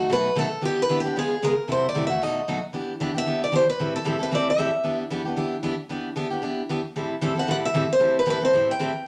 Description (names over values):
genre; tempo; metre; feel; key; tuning
jazz; 228 BPM; 4/4; swing 55% on 8ths; E minor; A4 = 438 Hz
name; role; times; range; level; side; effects
picked acoustic archtop guitar; melody; 0.0-5.0, 7.4-9.1 s; F#4 to G5; -25 LUFS; equal; none
picked steel-string acoustic guitar; accompaniment; 0.0-8.9 s; F#2 to A4; -28 LUFS; equal; none
room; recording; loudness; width
wet studio reverb, RT60 0.7 s; none; -24 LUFS; mono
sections
0.0-2.7 A section; 2.7-9.1 A section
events
none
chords
0.0 B7; 0.6 Em7; 1.2 C#7; 1.7 F#m7b5; 2.2 B7; 2.7 Em7; 3.8 Am7; 4.8 Em7; 7.0 Am7